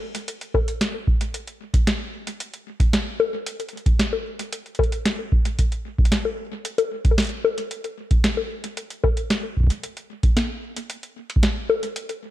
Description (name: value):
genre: IDM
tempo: 113 BPM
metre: 4/4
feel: straight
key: none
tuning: none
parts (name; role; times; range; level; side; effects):
- booming analog drum machine; drums; 0.1-12.2 s; bongos, hi-hat, snare drum; -24 LUFS; left 2 dB; studio reverb, analog delay
- electronic kick drum; drums; 0.5-11.5 s; none; -20 LUFS; right 1 dB; studio reverb
room: light reverb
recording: none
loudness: -21 LUFS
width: side -14 dB against mid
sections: 0.0-12.3 A section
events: none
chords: none